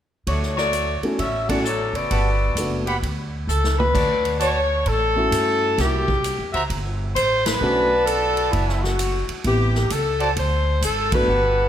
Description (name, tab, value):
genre	jazz, big band swing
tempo	131 BPM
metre	4/4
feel	swing 65% on 8ths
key	D major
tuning	A4 = 440 Hz
part	bright saxophone section	melody	0.3-11.7 s	F#3 to F#5	-21 LUFS	left 2 dB	none
part	upright bass	bass	0.3-11.7 s	F#1 to G2	-24 LUFS	equal	none
part	swinging big-band drum kit	drums	0.3-11.2 s	crash cymbal, hi-hat, kick drum, ride cymbal, snare drum, toms	-29 LUFS	right 1 dB	none
part	warm upright piano	accompaniment	1.0-11.3 s	G3 to G4	-26 LUFS	equal	none
part	clear trumpet section	stabs	1.5-11.7 s	F#4 to B5	-27 LUFS	right 3 dB	none
room	light reverb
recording	none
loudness	-18 LUFS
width	side -10 dB against mid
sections	0.3-3.9 A section; 3.9-11.7 B section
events	drum fill 3.5-3.9; band accent 7.4, 11.1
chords	0.3 Dmaj7; 2.1 Gmaj9; 3.9 Dmaj7; 5.8 C7#11; 7.6 Bm7; 9.4 Am9; 10.4 D7